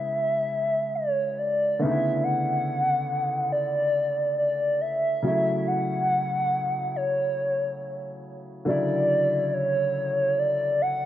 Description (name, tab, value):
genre	R&B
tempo	70 BPM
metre	4/4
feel	straight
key	B dorian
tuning	A4 = 440 Hz
part	hollow clarinet-like synth lead	melody	0.0-11.1 s	C#5 to F#5	-24 LUFS	equal	chorus
part	warm grand piano	accompaniment	0.0-11.1 s	C#3 to E4	-30 LUFS	equal	none
room	light reverb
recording	none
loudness	-22 LUFS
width	side -12 dB against mid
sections	0.0-11.1 A section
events	none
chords	0.0 C#m7; 1.8 Bm11; 5.2 A6; 8.7 Dmaj9